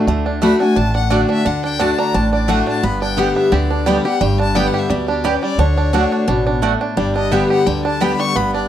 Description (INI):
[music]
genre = bluegrass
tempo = 174 BPM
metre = 4/4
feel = swing 54% on 8ths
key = D major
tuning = A4 = 440 Hz
[part]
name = picked steel-string acoustic guitar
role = accompaniment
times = 0.0-8.7 s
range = G2 to G4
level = -17 LUFS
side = left 3 dB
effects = none
[part]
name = bluegrass banjo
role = arpeggios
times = 0.0-8.7 s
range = G3 to G4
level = -21 LUFS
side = right 6 dB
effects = none
[part]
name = upright bass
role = bass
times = 0.1-8.7 s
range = G1 to D2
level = -21 LUFS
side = equal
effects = none
[part]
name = rich fiddle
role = second line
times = 0.4-8.7 s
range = G4 to C#6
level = -24 LUFS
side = left 7 dB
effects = none
[part]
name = mandolin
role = stabs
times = 0.4-8.1 s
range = A3 to G5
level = -22 LUFS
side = right 8 dB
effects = slapback echo
[sound]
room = little or no reverb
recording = dry, close 1970s-style studio recording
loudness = -14 LUFS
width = side -11 dB against mid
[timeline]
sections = 0.0-8.7 A section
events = fiddle solo 0.0-8.7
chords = 0.0 D; 2.8 G; 5.6 D; 7.0 G